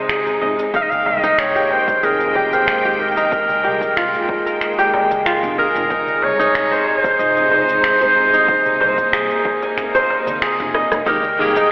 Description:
organic downtempo; 93 BPM; 4/4; swing 54% on 16ths; F minor; A4 = 441 Hz
clear symphonic string section; sustained chords; 0.0-11.7 s; C3 to G5; -24 LUFS; equal; sidechain pumping
kora; arpeggios; 0.0-11.7 s; Eb4 to Ab5; -19 LUFS; equal; digital delay, slapback echo
deep house drum kit; drums; 0.1-11.7 s; finger snaps, rim click, shaker, toms; -23 LUFS; equal; slapback echo
darbuka; percussion; 0.1-11.4 s; -32 LUFS; equal
upright bass; bass; 0.4-11.6 s; F1 to Eb2; -32 LUFS; equal; sidechain pumping
electronic kick drum; drums; 0.7-11.2 s; -28 LUFS; equal
drifting glass-harmonics texture; texture; 2.0-11.1 s; Ab3 to Ab4; -27 LUFS; equal; chorus, built-in reverb
bright clarinet; melody; 0.8-11.7 s; Ab4 to F5; -17 LUFS; equal; digital delay, slapback echo
electric guitar at the edge of break-up; accompaniment; 11.1-11.6 s; Eb3 to G4; -20 LUFS; left 1 dB; sidechain pumping
wet lush hall reverb, RT60 2.2 s; big arena sound, telephone sound; -14 LUFS; side -24 dB against mid
0.0-11.1 A section
drum fill 10.7-11.1
0.0 Ab; 0.7 Fm11; 5.9 Ab/F; 11.1 Fm11
0.10 | 0.75 1.39 2.04 2.68 | 3.33 3.97 4.62 5.26 | 5.91 6.55 7.20 7.84 | 8.49 9.13 9.78 10.42 | 11.07 11.71

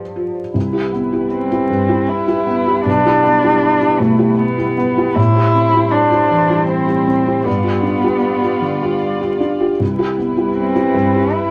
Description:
neoclassical piano and strings; 78 BPM; 3/4; rubato; C major; A4 = 445 Hz
muted cello; second line; 0.0-11.5 s; F3 to E4; -18 LUFS; equal
felt-muted upright piano; accompaniment; 0.0-11.5 s; B1 to D5; -19 LUFS; equal
muted chamber string section; sustained chords; 0.5-11.5 s; G3 to D5; -27 LUFS; equal
moderate studio ambience, RT60 0.5 s; vinyl crackle; -16 LUFS; mono
0.6-11.5 A section
0.0 G7; 0.6 Cmaj7; 2.9 Em7/B; 5.2 Am7 (rootless); 7.5 G7; 9.8 Cmaj7
| 0.55 1.33 2.10 | 2.86 3.63 4.39 | 5.17 5.93 6.69 | 7.46 8.23 9.02 | 9.80 10.57 11.34

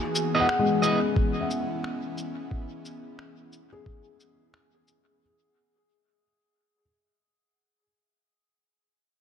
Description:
ambient dub; 89 BPM; 4/4; swing 59% on 16ths; C# minor; A4 = 440 Hz
airy breathy pad; sustained chords; 0.0-5.2 s; E3 to G#4; -32 LUFS; left 2 dB; chorus
bubbling stepped-filter texture; texture; 0.0-5.2 s; G#4; -37 LUFS; right 8 dB; chorus, built-in reverb
electronic shaker and finger snaps; drums; 0.2-5.0 s; -35 LUFS; left 1 dB; dub echo
electric guitar at the edge of break-up; stabs; 0.3-1.0 s; B3 to D#5; -27 LUFS; right 3 dB; dub echo
felt-muted upright piano; arpeggios; 0.4-6.8 s; G#3 to F#5; -27 LUFS; left 4 dB; dub echo
electronic kick drum; drums; 1.2-4.0 s; -26 LUFS; equal
moderate echo chamber reverb, RT60 2.3 s; -24 LUFS; side -8 dB against mid
0.0-5.2 A section
fade-out 0.0-5.2
0.0 C#m7
0.49 1.17 1.84 | 2.51 3.19 3.86 4.54

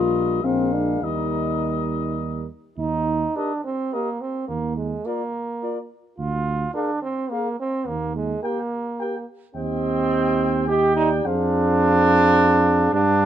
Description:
classical, brass quintet; 106 BPM; 3/4; straight; Eb major; A4 = 445 Hz
mellow cornet; melody; 0.0-13.3 s; D5 to G5; -30 LUFS; left 9 dB
mellow flugelhorn; second line; 0.0-13.3 s; Bb4 to Eb5; -30 LUFS; right 8 dB
brilliant trombone; accompaniment; 0.0-13.3 s; G3 to G4; -23 LUFS; right 3 dB
mellow French horn; accompaniment; 0.0-13.3 s; C4 to Ab4; -25 LUFS; left 4 dB
dark tuba; bass; 0.0-13.3 s; Bb1 to G2; -24 LUFS; right 3 dB
light reverb; dark, warm production; -20 LUFS; side -10 dB against mid
0.0-2.8 A section; 2.8-13.3 B section
0.4 Bb7; 1.0 Eb; 4.5 Bb5/Eb; 6.2 Bb7/D; 7.9 Eb; 9.5 Cm/Eb; 11.2 Dm7b5/F
0.44 | 1.03 1.62 2.20 | 2.78 3.35 3.92 | 4.49 5.06 5.62 | 6.19 6.75 7.31 | 7.87 8.43 8.99 | 9.55 10.11 10.68 | 11.24 11.80 12.36 | 12.93

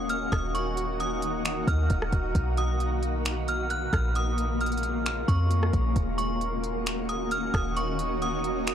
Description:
hip hop, atmospheric cloud-rap; 133 BPM; 4/4; half-time; Eb minor; A4 = 440 Hz
metallic FM bell; melody; 0.0-8.7 s; Db6 to F#6; -32 LUFS; right 1 dB; chorus, analog delay
shimmering ambient pad; sustained chords; 0.0-8.7 s; B2 to Gb4; -31 LUFS; equal; chorus, built-in reverb, sidechain pumping
clean 808-style bass; bass; 0.0-8.7 s; Eb1 to F2; -29 LUFS; equal
wind-like tuned noise texture; texture; 0.0-8.7 s; A#3 to Eb6; -41 LUFS; left 1 dB; built-in reverb
smooth R&B drum kit; drums; 0.1-8.7 s; finger snaps, hi-hat, kick drum, rim click; -30 LUFS; equal; overdrive
little or no reverb; dry, gritty hardware recording; -25 LUFS; side -9 dB against mid
0.0-8.7 A section
0.0 Ebm7; 2.4 Bmaj7; 4.2 Bbm7; 6.0 Ebm7
0.10 | 0.55 1.00 1.45 1.90 | 2.35 2.80 3.25 3.70 | 4.16 4.61 5.06 5.51 | 5.96 6.41 6.86 7.31 | 7.76 8.22 8.67

